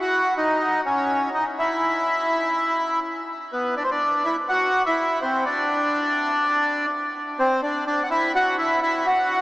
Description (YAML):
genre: tango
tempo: 124 BPM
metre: 4/4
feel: rubato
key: unclear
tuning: A4 = 441 Hz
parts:
  - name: bandoneon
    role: solo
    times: 0.0-9.4 s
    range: B3 to F#5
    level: -20 LUFS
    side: equal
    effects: analog delay
room: wet huge ambient reverb, RT60 7.7 s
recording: dreamy mix soaked in reverb, small speaker sound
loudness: -20 LUFS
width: side -18 dB against mid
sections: 0.0-3.5 A section; 3.5-9.4 B section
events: none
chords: 0.0 D#m; 0.6 C#sus2; 1.6 N.C.; 3.5 E5; 4.5 C; 5.5 N.C.; 7.4 Csus2; 8.3 Esus2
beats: 0.10 0.58 1.07 | 1.55 2.04 2.53 3.02 | 3.51 4.00 4.48 4.97 | 5.45 5.93 6.41 6.89 | 7.37 7.85 8.33 8.81 | 9.29